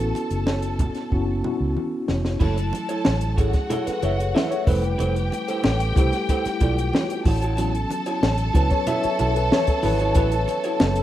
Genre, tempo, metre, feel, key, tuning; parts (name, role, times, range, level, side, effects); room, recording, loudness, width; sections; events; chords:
lush 1970s-style soul; 93 BPM; 4/4; straight; A major; A4 = 439 Hz
clear concert grand piano; melody; 0.0-2.1 s; A4; -36 LUFS; right 3 dB; slapback echo
warm studio string section; second line; 0.0-11.0 s; F#4 to A5; -28 LUFS; right 1 dB
mellow tine electric piano; accompaniment; 0.0-11.0 s; F#3 to E5; -26 LUFS; left 3 dB; medium stereo tremolo
vintage muted fingered electric bass; bass; 0.0-11.0 s; F1 to C#2; -24 LUFS; equal
congas; percussion; 0.1-11.0 s; -34 LUFS; right 4 dB
compact cocktail drum kit; drums; 0.2-11.0 s; crash cymbal, hi-hat, kick drum, snare drum; -23 LUFS; equal
electric guitar through a small old amp; riff; 2.4-10.8 s; E4 to E5; -29 LUFS; right 5 dB
light reverb; rough home demo mix; -20 LUFS; side -13 dB against mid
0.0-2.4 A section; 2.4-11.0 B section
drum fill 1.1-2.4; tine electric piano solo 2.4-11.0
0.0 A6; 2.4 F#m7; 4.7 Fmaj7; 7.3 A6